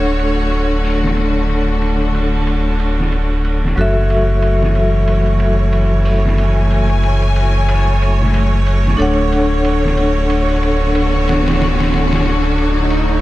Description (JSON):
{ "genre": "trip hop", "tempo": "92 BPM", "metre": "4/4", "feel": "swing 57% on 16ths", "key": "unclear", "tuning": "A4 = 440 Hz", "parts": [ { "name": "vibraphone with medium mallets", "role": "accompaniment", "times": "0.0-13.2 s", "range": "F#3 to F#5", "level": "-19 LUFS", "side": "left 1 dB", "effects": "tremolo, tape echo" }, { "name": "rich symphonic string section", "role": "sustained chords", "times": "0.0-13.2 s", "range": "D3 to G#5", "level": "-20 LUFS", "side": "equal", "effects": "none" }, { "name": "round analog bass", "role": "bass", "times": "0.0-13.2 s", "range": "D1 to F#1", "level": "-16 LUFS", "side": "equal", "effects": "none" }, { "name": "trip hop sampler-style drum kit", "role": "drums", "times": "0.1-13.1 s", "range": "hi-hat, ride cymbal, snare drum", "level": "-25 LUFS", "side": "right 1 dB", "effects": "overdrive, low-pass filter on cymbals, low-pass filter on snare, low-pass filter on hats" }, { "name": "riser", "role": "sound effects", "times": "10.4-13.2 s", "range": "none", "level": "-25 LUFS", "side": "right 1 dB", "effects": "none" } ], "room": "light reverb, digital ambience", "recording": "none", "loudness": "-13 LUFS", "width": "side -16 dB against mid", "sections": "0.0-13.2 A section", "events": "riser 10.4-13.2", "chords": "0.0 Dmaj7; 3.8 F#m7; 9.0 Dmaj7", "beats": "0.51 | 1.16 1.82 2.47 3.12 | 3.77 4.42 5.08 5.73 | 6.38 7.03 7.69 8.34 | 8.99 9.64 10.29 10.95 | 11.60 12.25 12.90" }